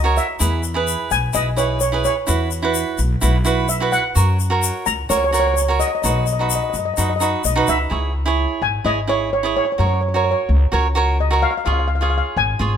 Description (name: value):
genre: calypso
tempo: 128 BPM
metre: 4/4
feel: straight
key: unclear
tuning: A4 = 440 Hz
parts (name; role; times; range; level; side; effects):
- steel pan; melody; 0.0-12.8 s; C#5 to A#5; -21 LUFS; left 1 dB; none
- cavaquinho; accompaniment; 0.0-12.7 s; D#4 to C#5; -21 LUFS; right 4 dB; none
- upright bass; bass; 0.0-12.8 s; G#1 to F#2; -20 LUFS; equal; none
- tube shaker; percussion; 0.2-7.8 s; none; -25 LUFS; left 9 dB; none
room: moderate plate reverb, RT60 2.4 s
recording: minimal, uncompressed stereo recording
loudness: -16 LUFS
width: side -8 dB against mid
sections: 0.0-7.9 A section; 7.9-12.8 A section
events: none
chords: 0.4 E; 2.3 Esus2; 4.2 F#; 6.0 B; 7.9 C#m; 9.8 F#; 11.7 C#